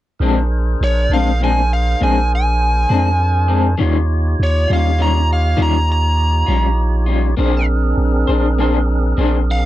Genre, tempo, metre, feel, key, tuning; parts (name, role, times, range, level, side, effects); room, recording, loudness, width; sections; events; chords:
blues; 67 BPM (dotted quarters); 12/8; straight; Bb mixolydian; A4 = 444 Hz
electric guitar through a small old amp; accompaniment; 0.2-9.4 s; Bb2 to C5; -19 LUFS; left 6 dB; tremolo
tonewheel organ; sustained chords; 0.2-9.7 s; C4 to Db5; -24 LUFS; right 1 dB; slow rotary speaker
punchy sub bass; bass; 0.2-9.7 s; Bb1 to F2; -16 LUFS; equal
biting lead guitar; melody; 0.8-9.7 s; Db5 to Bb5; -19 LUFS; right 1 dB; overdrive
little or no reverb; dry, close 1970s-style studio recording; -13 LUFS; side -14 dB against mid
0.2-9.7 A section
0.2 Bb9; 3.8 Eb9; 7.4 Bb9